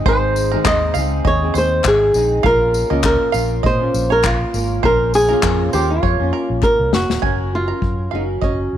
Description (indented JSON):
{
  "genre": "acoustic pop",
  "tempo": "100 BPM",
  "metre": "4/4",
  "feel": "swing 55% on 16ths",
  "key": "unclear",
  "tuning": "A4 = 439 Hz",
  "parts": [
    { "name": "flamenco guitar", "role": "melody", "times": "0.0-8.8 s", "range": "Db4 to Eb5", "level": "-18 LUFS", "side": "equal", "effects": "none" },
    { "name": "fingerpicked plugged-in steel-string acoustic guitar", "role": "accompaniment", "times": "0.0-8.8 s", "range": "Ab2 to Bb4", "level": "-23 LUFS", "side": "equal", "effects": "double-tracked left and right" },
    { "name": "bluegrass banjo", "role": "arpeggios", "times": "0.1-8.6 s", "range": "Bb4 to Bb5", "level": "-25 LUFS", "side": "right 12 dB", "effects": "none" },
    { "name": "fingered electric bass", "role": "bass", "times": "0.1-8.8 s", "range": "Eb1 to Bb2", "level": "-21 LUFS", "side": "equal", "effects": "none" },
    { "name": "unplugged drum kit", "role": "drums", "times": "0.1-8.6 s", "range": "handclaps, kick drum, snare drum, tambourine", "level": "-21 LUFS", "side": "left 2 dB", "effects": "none" },
    { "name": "group handclap", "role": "percussion", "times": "0.7-6.8 s", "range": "none", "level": "-35 LUFS", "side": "left 15 dB", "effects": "none" }
  ],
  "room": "small room ambience",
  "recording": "1960s-style stereo with parts hard left and right",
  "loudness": "-14 LUFS",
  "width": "side -11 dB against mid",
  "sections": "0.0-7.2 A section; 7.2-8.8 B section",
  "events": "drum fill 6.0-7.2",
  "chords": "0.0 Ab; 2.5 Bbm; 7.2 Gb"
}